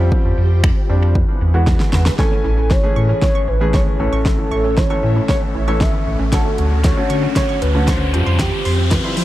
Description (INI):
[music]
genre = dance-pop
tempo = 116 BPM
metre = 4/4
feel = straight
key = A major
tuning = A4 = 439 Hz
[part]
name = warm concert grand piano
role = accompaniment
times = 0.0-9.2 s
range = D3 to G#5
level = -23 LUFS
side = left 1 dB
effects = analog delay
[part]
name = string machine, cellos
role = sustained chords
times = 0.0-9.2 s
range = D3 to G#5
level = -28 LUFS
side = equal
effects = phaser, ensemble chorus, sidechain pumping
[part]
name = warm sub bass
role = bass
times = 0.0-9.2 s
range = A1 to F3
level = -17 LUFS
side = equal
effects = sidechain pumping
[part]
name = deep house drum kit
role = drums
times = 0.1-9.2 s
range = finger snaps, hi-hat, kick drum, snare drum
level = -18 LUFS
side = equal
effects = overdrive
[part]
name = warm velvety synth lead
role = melody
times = 2.2-9.2 s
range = G4 to E5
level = -23 LUFS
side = equal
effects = chorus, analog delay
[part]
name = hollow square pluck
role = arpeggios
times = 2.2-9.2 s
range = D3 to C#6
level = -29 LUFS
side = right 5 dB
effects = chorus, sidechain pumping, analog delay
[part]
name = riser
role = sound effects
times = 3.8-9.2 s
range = none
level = -28 LUFS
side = equal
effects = none
[sound]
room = light reverb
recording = echo-heavy mix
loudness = -14 LUFS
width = side -15 dB against mid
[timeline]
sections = 0.0-2.2 A section; 2.2-9.2 B section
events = drum fill 1.7-2.2, 2.2-9.2; build-up 2.2-9.2; filter sweep 2.2-9.2; riser 3.8-9.2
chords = 0.0 Fsus2; 1.2 Eadd9; 2.2 Amaj7; 4.0 A; 6.3 Dmaj7; 8.1 Fsus2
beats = | 0.12 0.64 1.15 1.67 | 2.19 2.71 3.22 3.74 | 4.26 4.77 5.29 5.81 | 6.33 6.84 7.36 7.88 | 8.39 8.91